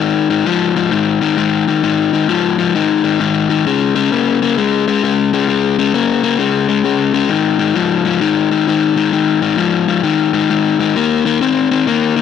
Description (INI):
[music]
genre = blues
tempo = 132 BPM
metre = 4/4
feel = swing 65% on 8ths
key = unclear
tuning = A4 = 440 Hz
[part]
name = overdriven electric guitar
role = solo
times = 0.0-12.2 s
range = Ab2 to C4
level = -12 LUFS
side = left 8 dB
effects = tape echo
[sound]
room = light reverb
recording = none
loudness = -12 LUFS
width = side -7 dB against mid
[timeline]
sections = 0.0-12.2 A section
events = none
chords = 0.0 Ab5; 3.7 Db5; 7.3 Ab5; 11.0 Eb5